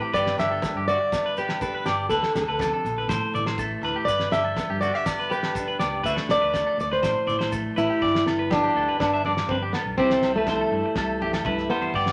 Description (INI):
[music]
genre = highlife guitar band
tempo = 122 BPM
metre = 4/4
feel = straight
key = G major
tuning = A4 = 439 Hz
[part]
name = clean electric guitar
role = accompaniment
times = 0.0-12.1 s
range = G2 to G4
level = -35 LUFS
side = equal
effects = none
[part]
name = clean electric guitar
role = arpeggios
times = 0.0-12.1 s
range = F#4 to E5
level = -31 LUFS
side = equal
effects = spring reverb
[part]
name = fingerpicked plugged-in swing-style acoustic guitar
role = melody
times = 0.1-12.1 s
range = A3 to E5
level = -26 LUFS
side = equal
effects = none
[part]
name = fingered electric bass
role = bass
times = 0.1-12.1 s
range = G1 to G2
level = -36 LUFS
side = equal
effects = none
[part]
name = cloth-damped thuddy drum kit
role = drums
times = 0.1-12.1 s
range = kick drum, snare drum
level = -34 LUFS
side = equal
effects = none
[part]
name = congas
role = percussion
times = 0.1-12.0 s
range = none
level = -40 LUFS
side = equal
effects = none
[part]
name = maracas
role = percussion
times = 0.2-7.9 s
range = none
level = -50 LUFS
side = equal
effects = none
[part]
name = agogo bells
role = percussion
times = 0.4-11.8 s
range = none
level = -39 LUFS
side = equal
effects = none
[sound]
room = moderate studio ambience, RT60 0.5 s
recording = none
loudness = -24 LUFS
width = mono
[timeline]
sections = 0.0-8.0 A section; 8.0-12.1 B section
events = none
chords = 0.1 G; 2.1 D5; 3.1 Am; 4.1 G; 6.0 D; 7.0 Am; 8.0 G; 10.0 C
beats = | 0.14 0.63 1.12 1.61 | 2.11 2.60 3.09 3.58 | 4.08 4.57 5.06 5.55 | 6.05 6.54 7.03 7.52 | 8.02 8.51 9.00 9.49 | 9.98 10.48 10.97 11.46 | 11.95